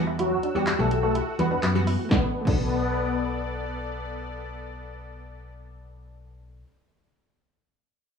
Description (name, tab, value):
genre	dance-pop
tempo	125 BPM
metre	4/4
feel	straight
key	B minor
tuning	A4 = 441 Hz
part	wavetable chord stab	accompaniment	0.0-6.7 s	D3 to A4	-30 LUFS	left 1 dB	sidechain pumping
part	sweeping resonant pad	sustained chords	0.0-6.3 s	B3 to E6	-36 LUFS	equal	chorus, sidechain pumping
part	soft round pluck	arpeggios	0.0-6.7 s	G3 to F#5	-36 LUFS	left 3 dB	none
part	slap-like FM bass	bass	0.0-6.6 s	B1 to F#2	-30 LUFS	equal	sidechain pumping
part	direct-recorded clean electric guitar	riff	0.1-2.6 s	D4 to F#4	-36 LUFS	right 4 dB	lush chorus
part	filtered supersaw swell	melody	0.2-3.5 s	F#3 to B4	-27 LUFS	left 1 dB	sidechain pumping, tape echo
part	punchy analog drum machine	drums	0.2-2.6 s	crash cymbal, handclaps, hi-hat, kick drum, snare drum	-26 LUFS	equal	none
room	moderate digital room reverb, RT60 1.0 s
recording	rough home demo mix, studio ambience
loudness	-23 LUFS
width	side -6 dB against mid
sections	0.0-2.1 A section; 2.1-6.0 B section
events	drop 0.0-2.1; kick muted 0.2-2.1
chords	0.0 Emadd9; 2.1 Bm7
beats	| 0.19 0.67 1.15 1.63 | 2.11 2.59 3.07 3.55 | 4.03 4.51 4.99 5.47